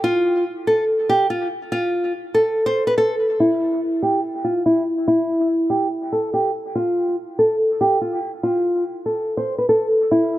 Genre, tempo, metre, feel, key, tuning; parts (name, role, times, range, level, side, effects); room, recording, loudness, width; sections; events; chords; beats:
hip hop; 143 BPM; 4/4; half-time; A minor; A4 = 440 Hz
nylon-string guitar; solo; 0.0-10.4 s; E4 to C5; -17 LUFS; equal; low-pass filter, dub echo
light reverb, small room ambience; echo-heavy mix; -17 LUFS; side -15 dB against mid
0.0-3.4 A section; 3.4-10.4 B section
filter sweep on nylon-string guitar 3.4-10.4
| 0.04 0.46 0.88 1.30 | 1.72 2.14 2.56 2.98 | 3.40 3.82 4.24 4.66 | 5.08 5.50 5.91 6.33 | 6.75 7.17 7.59 8.01 | 8.43 8.85 9.27 9.69 | 10.11